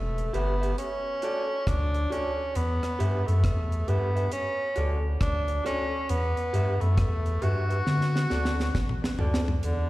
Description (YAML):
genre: roots reggae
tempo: 68 BPM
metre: 4/4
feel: swing 62% on 16ths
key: unclear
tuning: A4 = 438 Hz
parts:
  - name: breathy tenor saxophone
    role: melody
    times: 0.0-9.9 s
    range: D3 to F#4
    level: -30 LUFS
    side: equal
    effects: dub echo, slapback echo
  - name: soft dub sub bass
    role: bass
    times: 0.0-9.9 s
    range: E1 to D3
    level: -26 LUFS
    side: equal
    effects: none
  - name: deep reggae drum kit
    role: drums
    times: 0.2-9.9 s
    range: hi-hat, kick drum, rim click, snare drum, toms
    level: -29 LUFS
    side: equal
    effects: none
  - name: electric guitar through a small old amp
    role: accompaniment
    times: 0.3-9.4 s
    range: F#4 to E5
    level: -35 LUFS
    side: right 1 dB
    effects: spring reverb, dub echo, slapback echo
room: studio reverb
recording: live gig heard through the venue's PA, recital hall reverb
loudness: -24 LUFS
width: side -17 dB against mid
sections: 0.0-9.6 A section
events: drum fill 7.9-9.6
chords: 0.0 Em; 0.8 D; 2.6 Em; 4.3 D; 6.1 Em; 7.9 D